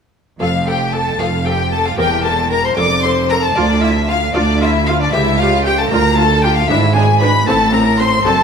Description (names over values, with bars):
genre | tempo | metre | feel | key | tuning
classical, baroque-style concerto movement with solo episodes | 76 BPM (dotted quarters) | 6/8 | straight | F major | A4 = 441 Hz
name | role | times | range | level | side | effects
rich chamber violin section | melody | 0.4-8.4 s | D5 to D6 | -19 LUFS | left 5 dB | none
rich violin | melody | 0.4-8.4 s | D5 to D6 | -19 LUFS | left 1 dB | none
rich chamber violin section | second line | 0.4-8.4 s | D4 to D5 | -20 LUFS | left 2 dB | none
buff-stop harpsichord | accompaniment | 0.4-8.4 s | C#2 to A4 | -27 LUFS | equal | none
rich chamber viola section | accompaniment | 0.4-8.3 s | C4 to Bb4 | -22 LUFS | right 1 dB | none
rich chamber cello section | bass | 0.4-8.4 s | C#2 to A2 | -19 LUFS | right 2 dB | none
rich studio double bass section | bass | 0.4-8.4 s | E1 to D2 | -20 LUFS | right 3 dB | none
room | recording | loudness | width
wet concert hall reverb, RT60 1.9 s | none | -12 LUFS | side -6 dB against mid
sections
0.4-8.4 A section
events
none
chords
0.4 F; 2.0 C7/E; 2.8 F; 3.6 Dm; 5.1 A7/C#; 5.9 Dm; 6.7 E7/G#; 7.5 Am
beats
| 0.40 1.20 | 1.98 2.77 | 3.56 4.35 | 5.13 5.91 | 6.70 7.47 | 8.25